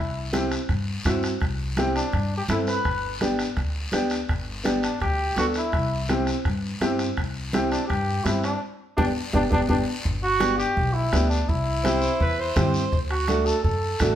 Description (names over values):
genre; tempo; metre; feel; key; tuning
latin, cumbia; 167 BPM; 4/4; straight; G major; A4 = 441 Hz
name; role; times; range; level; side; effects
dark trumpet; melody; 0.0-14.1 s; D4 to B4; -26 LUFS; equal; none
upright bass; bass; 0.0-14.2 s; G1 to G2; -28 LUFS; equal; none
clear upright piano; accompaniment; 0.3-14.2 s; A3 to A4; -26 LUFS; equal; none
bombo; percussion; 0.3-14.2 s; none; -29 LUFS; equal; none
congas; percussion; 0.3-14.2 s; none; -33 LUFS; right 3 dB; none
guiro; percussion; 0.3-14.2 s; none; -36 LUFS; left 3 dB; none
accordion; second line; 11.8-13.0 s; B4 to C5; -28 LUFS; right 1 dB; none
room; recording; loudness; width
moderate large studio reverb, RT60 1.0 s; band playing live in one room; -22 LUFS; side -10 dB against mid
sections
0.0-10.1 A section; 10.1-14.2 B section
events
band accent 8.6-10.1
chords
0.0 C; 2.9 G; 5.7 C; 8.6 G; 11.5 C; 12.9 D